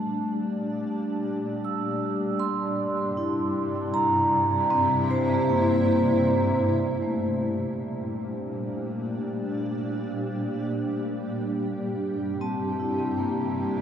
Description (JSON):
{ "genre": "ambient", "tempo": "78 BPM", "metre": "3/4", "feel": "straight", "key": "G dorian", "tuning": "A4 = 440 Hz", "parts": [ { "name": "granular cloud pad", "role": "sustained chords", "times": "0.0-13.8 s", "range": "G2 to G4", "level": "-29 LUFS", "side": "equal", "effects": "built-in reverb" }, { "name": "vibraphone with medium mallets", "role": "arpeggios", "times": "0.0-13.8 s", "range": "A3 to E6", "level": "-26 LUFS", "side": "equal", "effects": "diffuse ambient delay" }, { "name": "analog drone", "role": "drone", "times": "0.0-13.8 s", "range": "G3 to D4", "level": "-32 LUFS", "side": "equal", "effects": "chorus" } ], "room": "wet huge ambient reverb, RT60 7.7 s", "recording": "dark, warm production", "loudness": "-24 LUFS", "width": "side -8 dB against mid", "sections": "0.0-7.0 A section; 7.0-13.8 B section", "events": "fade-in on ambient pad 0.0-7.0", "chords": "0.0 Gm; 2.4 C/G; 7.0 Gm; 11.6 C/G" }